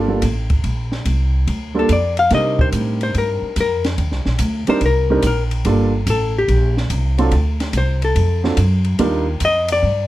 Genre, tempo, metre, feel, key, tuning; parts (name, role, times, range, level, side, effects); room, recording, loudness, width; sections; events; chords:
jazz, small-group swing and bop; 144 BPM; 4/4; swing 67% on 8ths; G minor; A4 = 442 Hz
warm grand piano; accompaniment; 0.0-9.3 s; F#3 to Bb4; -19 LUFS; right 3 dB
upright bass; bass; 0.0-10.1 s; G1 to C3; -18 LUFS; equal
compact cocktail drum kit; drums; 0.2-10.0 s; hi-hat, kick drum, ride cymbal, snare drum; -25 LUFS; equal
hollow-body jazz guitar; melody; 1.8-10.1 s; G4 to F5; -18 LUFS; left 3 dB
light reverb; -15 LUFS; side -15 dB against mid
0.0-10.1 A section
hollow-body jazz guitar solo 0.0-10.1
0.0 Gm7; 2.3 Cm7; 5.7 Gm7; 7.3 D7#9; 9.0 Ebmaj7